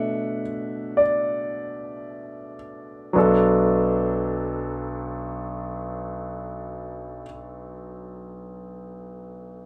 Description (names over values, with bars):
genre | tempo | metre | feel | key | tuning
pop | free time | none | none | B minor | A4 = 439 Hz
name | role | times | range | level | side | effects
warm concert grand piano | accompaniment | 0.0-9.7 s | B1 to F#5 | -26 LUFS | equal | none
room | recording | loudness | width
wet studio ambience, RT60 0.5 s | band playing live in one room | -25 LUFS | mono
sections
0.0-3.2 A section; 3.2-7.7 B section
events
slowing down 0.0-3.2; grand piano solo 0.0-3.2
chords
0.0 Bm7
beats
free time